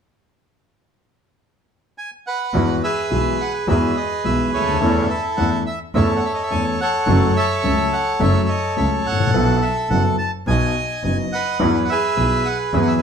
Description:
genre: tango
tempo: 106 BPM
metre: 4/4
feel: rubato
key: E major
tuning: A4 = 439 Hz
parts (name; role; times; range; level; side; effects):
- bandoneon; melody; 2.0-13.0 s; E4 to A5; -20 LUFS; right 2 dB; none
- warm grand piano; accompaniment; 2.5-13.0 s; F#1 to A4; -21 LUFS; left 2 dB; none
- clear double bass; bass; 2.5-13.0 s; F#1 to E2; -22 LUFS; right 1 dB; none
room: wet large studio reverb, RT60 0.9 s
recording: band playing live in one room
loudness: -17 LUFS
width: side -7 dB against mid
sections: 0.3-2.5 A section; 2.5-13.0 B section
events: none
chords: 0.3 N.C.; 2.5 Eadd9; 4.8 A/E; 7.1 F#m; 9.3 B7sus4; 10.5 B6; 11.6 Eadd9

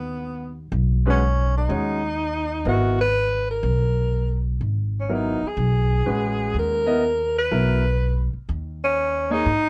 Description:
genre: modal jazz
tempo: 124 BPM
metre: 4/4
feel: swing 67% on 8ths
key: G# minor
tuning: A4 = 440 Hz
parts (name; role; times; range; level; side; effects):
- mellow tenor saxophone; melody; 0.0-9.7 s; B3 to B4; -26 LUFS; equal; none
- upright bass; bass; 0.0-9.7 s; G#1 to G#2; -26 LUFS; equal; none
- clear baby grand piano; accompaniment; 1.1-9.5 s; F#3 to D#5; -28 LUFS; equal; none
room: light reverb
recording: dark, warm production, lossy compression artefacts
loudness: -22 LUFS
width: mono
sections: 0.0-9.7 A section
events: none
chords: 0.0 G#m11

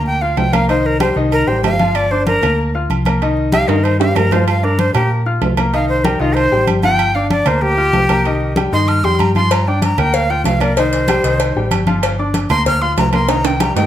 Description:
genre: latin, salsa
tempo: 190 BPM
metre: 4/4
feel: straight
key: unclear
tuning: A4 = 436 Hz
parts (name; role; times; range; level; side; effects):
- breathy bright jazz flute; melody; 0.0-13.9 s; F4 to F6; -17 LUFS; equal; slapback echo
- clear upright piano; accompaniment; 0.0-13.9 s; Eb3 to F6; -19 LUFS; left 3 dB; none
- hollow-body short-scale fingered electric bass; bass; 0.0-13.9 s; G1 to Bb2; -18 LUFS; equal; none
- congas; percussion; 0.1-13.9 s; none; -21 LUFS; left 2 dB; none
- timbales and agogo bells; percussion; 0.4-13.8 s; none; -22 LUFS; right 8 dB; none
- cowbell; percussion; 9.5-13.9 s; none; -23 LUFS; left 4 dB; none
room: moderate large studio reverb, RT60 0.9 s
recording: none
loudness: -12 LUFS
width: side -11 dB against mid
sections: 0.0-13.9 A section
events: flute solo 0.0-13.9; drum fill 3.7-4.5, 13.3-13.9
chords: 0.0 C9sus4; 0.7 Cm; 2.0 Gm7; 3.2 Cm; 4.5 Gm7; 5.7 Cm; 7.0 Gm7; 8.2 Cm; 9.5 Gm7; 10.8 Cm; 12.0 Gm7; 13.3 Cm

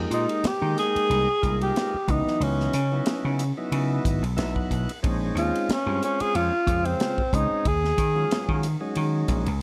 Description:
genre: electric jazz fusion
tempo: 92 BPM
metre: 4/4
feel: swing 55% on 16ths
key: unclear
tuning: A4 = 437 Hz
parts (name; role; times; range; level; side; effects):
- tonewheel organ; accompaniment; 0.0-9.5 s; Db3 to G5; -33 LUFS; equal; slow rotary speaker
- vintage slap bass; bass; 0.0-9.6 s; Ab1 to Eb3; -28 LUFS; equal; none
- breathy tenor saxophone; melody; 0.1-8.6 s; C4 to Ab4; -28 LUFS; equal; none
- tight funk drum kit; drums; 0.1-9.6 s; hi-hat, kick drum, ride cymbal, snare drum; -32 LUFS; equal; none
room: light reverb, small room ambience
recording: dark, warm production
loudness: -25 LUFS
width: mono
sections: 0.0-9.6 A section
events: tonewheel organ fill 4.0-5.0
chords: 0.0 Fm11; 2.1 Dbm11; 5.0 Bbm11; 7.7 Ebm11

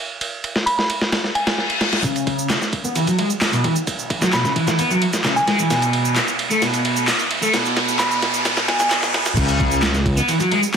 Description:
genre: breakbeat, breaks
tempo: 131 BPM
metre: 4/4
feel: straight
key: C# minor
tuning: A4 = 436 Hz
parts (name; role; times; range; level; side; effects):
- dusty soul sampler-style drum kit; drums; 0.2-10.8 s; crash cymbal, hi-hat, kick drum, ride cymbal, snare drum; -22 LUFS; right 1 dB; high-pass filter on hats, studio reverb, high-pass filter on cymbals, soft clipping on snare, high-pass filter on snare, high-pass filter on kick
- glassy synth bell; melody; 0.7-1.5, 4.3-8.9 s; G#5 to B5; -23 LUFS; right 1 dB; chorus, phaser, telephone sound, digital delay
- reverse cymbal, riser and noise sweep; sound effects; 1.3-9.4 s; none; -26 LUFS; equal; none
- crunchy overdriven guitar; riff; 2.0-10.6 s; B2 to B3; -20 LUFS; equal; low-pass filter, digital delay
- electronic shaker and handclaps; drums; 2.0-10.8 s; none; -25 LUFS; right 1 dB; low-pass filter on perc, studio reverb, low-pass filter on snare, low-pass filter on room
- dark detuned saw bass; bass; 9.4-10.2 s; C#2; -20 LUFS; equal; none
room: moderate plate reverb, RT60 1.3 s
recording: dense, heavily limited modern master, vinyl crackle, high-pass filter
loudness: -16 LUFS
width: side -7 dB against mid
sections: 0.0-2.0 A section; 2.0-9.4 B section; 9.4-10.8 C section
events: reverse cymbal 1.3-2.0; build-up 2.0-9.4; riser 2.0-9.4; filter sweep on overdriven electric guitar 2.0-9.4; drum fill 5.7-9.4; noise sweep 7.5-9.4; drop 9.4-10.8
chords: 0.0 N.C.; 2.0 C#m7; 5.7 N.C.

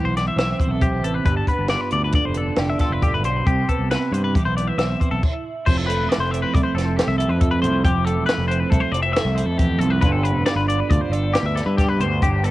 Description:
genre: math rock and midwest emo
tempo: 137 BPM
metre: 5/4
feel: straight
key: unclear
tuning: A4 = 440 Hz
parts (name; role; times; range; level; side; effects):
- twelve-string electric guitar; accompaniment; 0.0-12.5 s; E2 to G4; -24 LUFS; right 4 dB; analog chorus, cassette tape
- twelve-string electric guitar; arpeggios; 0.0-12.5 s; G4 to E5; -24 LUFS; left 4 dB; phaser, cassette tape, analog delay
- growling fingered electric bass; bass; 0.0-12.5 s; E1 to G2; -23 LUFS; equal; overdrive
- compact cocktail drum kit; drums; 0.2-12.5 s; crash cymbal, hi-hat, kick drum, snare drum; -22 LUFS; equal; cassette tape
room: small room ambience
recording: home recording on cassette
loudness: -18 LUFS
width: side -16 dB against mid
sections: 0.0-5.6 A section; 5.6-12.5 B section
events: stop 5.2-5.6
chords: 0.0 Cmaj7; 1.2 G7; 3.4 Cmaj7; 5.6 Fmaj7; 10.0 G7

